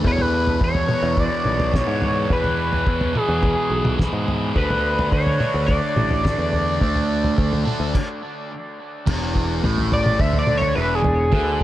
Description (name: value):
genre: psychedelic rock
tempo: 106 BPM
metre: 4/4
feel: straight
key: E mixolydian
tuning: A4 = 440 Hz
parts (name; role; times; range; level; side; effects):
- thick fuzz guitar; riff; 0.0-11.6 s; E2 to D4; -24 LUFS; right 1 dB; distortion, phaser, dub echo
- picked electric bass; bass; 0.0-11.6 s; E1 to G#2; -24 LUFS; equal; none
- cloth-damped thuddy drum kit; drums; 0.0-11.6 s; crash cymbal, kick drum, snare drum, toms; -22 LUFS; equal; none
- sync lead; melody; 0.1-11.6 s; G#4 to E5; -23 LUFS; equal; chorus, dub echo
room: light reverb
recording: echo-heavy mix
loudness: -18 LUFS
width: side -14 dB against mid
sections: 0.0-9.1 A section; 9.1-11.6 B section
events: stop 7.9-9.1; analog synth lead solo 9.1-11.6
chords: 0.1 E; 4.6 D5; 9.1 E